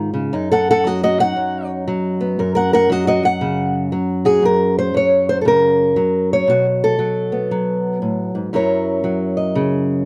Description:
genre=acoustic country blues, solo or duo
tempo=117 BPM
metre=4/4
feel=swing 63% on 8ths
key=F# mixolydian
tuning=A4 = 440 Hz
part: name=fingerpicked old ladder-braced acoustic guitar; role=solo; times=0.0-10.1 s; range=F#2 to F#5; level=-18 LUFS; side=equal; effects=none
room=moderate studio reverb, RT60 0.6 s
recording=dark, warm production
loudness=-17 LUFS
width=mono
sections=0.0-4.4 A section; 4.4-10.1 B section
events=steel-string acoustic guitar solo 0.0-4.4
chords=0.3 B7 (rootless); 2.4 F#; 6.5 B5; 8.5 F#7

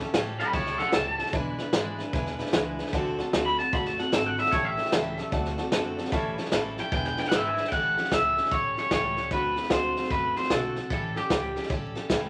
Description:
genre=rockabilly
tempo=150 BPM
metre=4/4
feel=swing 64% on 8ths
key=A mixolydian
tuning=A4 = 438 Hz
part: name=picked steel-string acoustic guitar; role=accompaniment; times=0.0-12.3 s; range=A2 to B4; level=-35 LUFS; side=equal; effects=none
part: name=warm upright piano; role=accompaniment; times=0.0-7.7 s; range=B4 to B5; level=-40 LUFS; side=equal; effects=none
part: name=upright bass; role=bass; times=0.1-12.3 s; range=E1 to F#2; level=-41 LUFS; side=equal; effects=none
part: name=vintage drum kit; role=drums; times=0.1-12.2 s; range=hi-hat, kick drum, snare drum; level=-31 LUFS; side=equal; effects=none
part: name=electric guitar at the edge of break-up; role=melody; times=0.4-11.7 s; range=G4 to B5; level=-29 LUFS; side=equal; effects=none
room=moderate club reverb, RT60 0.7 s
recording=vinyl crackle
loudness=-27 LUFS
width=mono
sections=0.0-7.7 A section; 7.7-12.3 B section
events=clean electric guitar solo 0.0-7.7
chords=0.0 A7; 1.3 E7; 2.9 D7; 4.5 A7; 5.3 D7; 6.1 A7; 6.9 E7; 7.7 A7; 9.3 D7; 10.9 A7

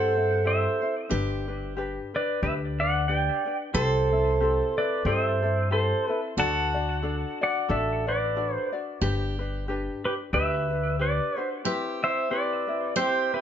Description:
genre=Hawaiian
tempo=91 BPM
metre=4/4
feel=swing 57% on 8ths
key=G major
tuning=A4 = 440 Hz
part: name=pedal steel guitar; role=melody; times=0.0-13.4 s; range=G4 to A5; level=-26 LUFS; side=right 1 dB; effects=digital delay
part: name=picked steel-string acoustic guitar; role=second line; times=0.0-13.4 s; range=F#4 to A4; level=-31 LUFS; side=right 2 dB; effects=none
part: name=ukulele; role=accompaniment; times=0.0-13.4 s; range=C4 to D5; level=-32 LUFS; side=left 3 dB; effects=none
part: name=upright bass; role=bass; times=0.0-11.2 s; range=G1 to G2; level=-29 LUFS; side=equal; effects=none
room=moderate studio reverb, RT60 0.6 s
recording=nothing above 7.6 kHz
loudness=-24 LUFS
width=side -9 dB against mid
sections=0.0-11.6 A section; 11.6-13.4 B section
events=none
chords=0.0 C; 1.1 G; 3.7 C6; 6.4 D; 9.0 G; 11.6 Cmaj7

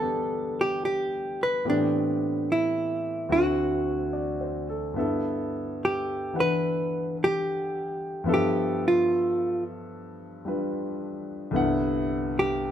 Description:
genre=jazz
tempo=73 BPM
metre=4/4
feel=swing 69% on 8ths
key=G major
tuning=A4 = 440 Hz
part: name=hollow-body jazz guitar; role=melody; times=0.0-12.7 s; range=D4 to B4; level=-25 LUFS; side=right 1 dB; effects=none
part: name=warm concert grand piano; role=accompaniment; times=0.0-12.7 s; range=C2 to F#5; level=-28 LUFS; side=left 1 dB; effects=none
room=moderate studio reverb, RT60 0.9 s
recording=minimal, uncompressed stereo recording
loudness=-24 LUFS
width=side -10 dB against mid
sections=0.0-5.0 A section; 5.0-12.7 B section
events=hollow-body jazz guitar solo 5.0-12.7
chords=0.0 G6; 1.6 Am7; 3.3 D7; 5.0 G6; 8.3 G13; 11.5 Cmaj9#11

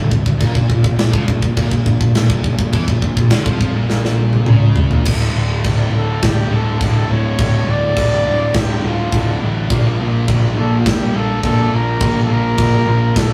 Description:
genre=heavy metal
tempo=104 BPM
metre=4/4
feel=straight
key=D harmonic minor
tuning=A4 = 440 Hz
part: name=heavy high-gain guitar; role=riff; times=0.0-13.3 s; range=D2 to Bb3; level=-26 LUFS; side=equal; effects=distortion
part: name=sludgy distorted guitar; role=riff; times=0.0-13.3 s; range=D2 to Bb3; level=-26 LUFS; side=equal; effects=overdrive
part: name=fuzz fingered electric bass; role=bass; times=0.0-13.3 s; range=D1 to F2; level=-21 LUFS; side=equal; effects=overdrive
part: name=tight metal drum kit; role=drums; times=0.1-13.3 s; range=china cymbal, crash cymbal, kick drum, snare drum, toms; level=-19 LUFS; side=equal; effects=none
part: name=dark trumpet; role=melody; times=5.9-13.3 s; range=F4 to D5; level=-23 LUFS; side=equal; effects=none
room=moderate studio reverb, RT60 0.6 s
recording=rough rehearsal-room recording, tube saturation, small room ambience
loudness=-15 LUFS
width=mono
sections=0.0-5.1 A section; 5.1-13.3 B section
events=drum fill 3.9-5.1; half time 5.1-13.3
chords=0.4 Bb5; 5.1 D5; 9.7 Bb5

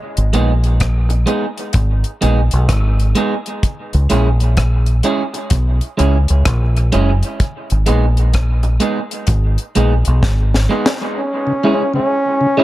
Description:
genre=dub reggae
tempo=64 BPM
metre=4/4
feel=swing 64% on 16ths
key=C# dorian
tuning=A4 = 440 Hz
part: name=deep dub fingered electric bass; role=bass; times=0.2-10.7 s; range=F#1 to C#2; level=-13 LUFS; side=equal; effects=none
part: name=deep reggae drum kit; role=drums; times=0.2-11.1 s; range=hi-hat, kick drum, rim click, snare drum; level=-19 LUFS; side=equal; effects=none
part: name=electric guitar at the edge of break-up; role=accompaniment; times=0.3-12.6 s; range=G#3 to G#4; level=-20 LUFS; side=right 2 dB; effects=dub echo
part: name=bright trombone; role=melody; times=11.2-12.6 s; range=C#4 to E4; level=-18 LUFS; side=equal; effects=dub echo
part: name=mellow tonewheel organ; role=accompaniment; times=11.5-12.6 s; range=C#3 to E4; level=-18 LUFS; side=left 1 dB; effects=slow rotary speaker, dub echo
room=light reverb, studio reverb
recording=echo-heavy mix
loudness=-13 LUFS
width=side -16 dB against mid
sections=0.0-11.2 A section; 11.2-12.6 B section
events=drum fill 10.2-11.2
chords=0.0 G#m; 3.6 C#m; 7.4 G#m; 11.2 C#m

